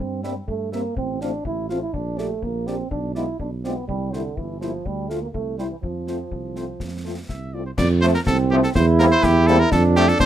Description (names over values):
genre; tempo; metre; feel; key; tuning
military-style march for wind band; 123 BPM; 2/4; straight; F major; A4 = 440 Hz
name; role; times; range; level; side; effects
warm euphonium; second line; 0.0-10.3 s; D3 to F4; -24 LUFS; right 2 dB; none
dark tuba; bass; 0.0-10.3 s; G1 to G2; -23 LUFS; right 2 dB; none
clear cornet; melody; 0.2-10.3 s; G4 to F5; -24 LUFS; equal; none
dark French horn section; accompaniment; 0.2-10.1 s; F3 to G4; -26 LUFS; left 3 dB; none
concert snare drum, concert bass drum and clash cymbals; drums; 0.2-10.3 s; none; -28 LUFS; left 2 dB; none
warm trombone section; sustained chords; 8.0-10.1 s; F3 to Bb3; -25 LUFS; left 1 dB; none
room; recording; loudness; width
light reverb; close, detailed microphones; -19 LUFS; side -11 dB against mid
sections
0.0-7.8 A section; 7.8-10.3 B section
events
none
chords
0.0 C7(no3)/G; 1.0 F/A; 1.9 Gm/Bb; 2.9 Bdim7; 3.9 C7; 4.9 Dm; 5.3 C; 5.8 F; 8.7 C7/E; 9.7 F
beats
0.48 | 0.96 1.45 | 1.94 2.42 | 2.91 3.40 | 3.88 4.37 | 4.86 5.34 | 5.83 6.32 | 6.80 7.29 | 7.78 8.26 | 8.75 9.23 | 9.72 10.20